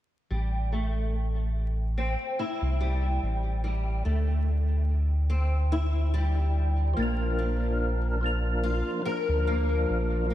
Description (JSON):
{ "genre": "trip hop", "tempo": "72 BPM", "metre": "4/4", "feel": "swing 54% on 16ths", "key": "A phrygian", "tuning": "A4 = 440 Hz", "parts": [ { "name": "flamenco guitar", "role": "arpeggios", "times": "0.3-10.3 s", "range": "G3 to Bb4", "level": "-32 LUFS", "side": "left 1 dB", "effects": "ensemble chorus, low-pass filter, tape echo" }, { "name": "round analog bass", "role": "bass", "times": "0.3-10.3 s", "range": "A1 to D2", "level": "-26 LUFS", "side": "equal", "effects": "none" }, { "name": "percussive tonewheel organ", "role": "accompaniment", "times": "6.9-10.3 s", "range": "F3 to Bb4", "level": "-30 LUFS", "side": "equal", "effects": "chorus vibrato, slow rotary speaker, tremolo, tape echo" } ], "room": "moderate lush hall reverb, RT60 2.9 s", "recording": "dreamy mix soaked in reverb, vinyl crackle", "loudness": "-25 LUFS", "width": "side -13 dB against mid", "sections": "0.3-10.3 A section", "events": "none", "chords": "0.3 Am7; 7.0 Bb" }